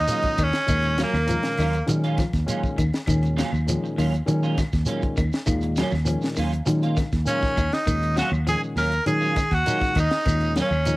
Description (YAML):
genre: afrobeat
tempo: 100 BPM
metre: 4/4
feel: straight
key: Eb minor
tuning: A4 = 439 Hz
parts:
  - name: raspy tenor saxophone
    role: melody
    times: 0.0-1.9, 7.3-11.0 s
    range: Bb3 to Bb4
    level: -24 LUFS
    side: right 1 dB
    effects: cassette tape
  - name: breathy trumpet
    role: second line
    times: 0.0-1.9, 7.3-11.0 s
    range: Bb4 to Bb5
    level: -33 LUFS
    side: right 1 dB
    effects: cassette tape
  - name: fingered electric bass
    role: bass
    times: 0.0-10.9 s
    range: Eb2 to Eb3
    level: -24 LUFS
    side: equal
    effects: none
  - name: overdriven tine electric piano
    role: accompaniment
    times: 0.1-11.0 s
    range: Bb2 to Eb4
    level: -30 LUFS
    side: left 2 dB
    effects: analog chorus, cassette tape
  - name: semi-hollow electric guitar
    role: stabs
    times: 0.1-10.8 s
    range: Gb3 to F4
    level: -31 LUFS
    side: right 4 dB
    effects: ensemble chorus, cassette tape
  - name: tight funk drum kit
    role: drums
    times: 0.1-11.0 s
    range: hi-hat, kick drum, snare drum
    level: -28 LUFS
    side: equal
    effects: cassette tape
  - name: shekere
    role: percussion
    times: 0.1-11.0 s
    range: none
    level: -31 LUFS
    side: right 2 dB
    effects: none
  - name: electric guitar at the edge of break-up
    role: arpeggios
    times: 0.4-11.0 s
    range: Eb3 to Gb3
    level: -31 LUFS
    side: left 3 dB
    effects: cassette tape
  - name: claves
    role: percussion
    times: 0.4-10.9 s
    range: none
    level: -42 LUFS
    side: left 1 dB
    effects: none
room: small room ambience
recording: home recording on cassette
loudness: -20 LUFS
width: side -20 dB against mid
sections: 0.0-11.0 A section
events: none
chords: 0.0 Ebm9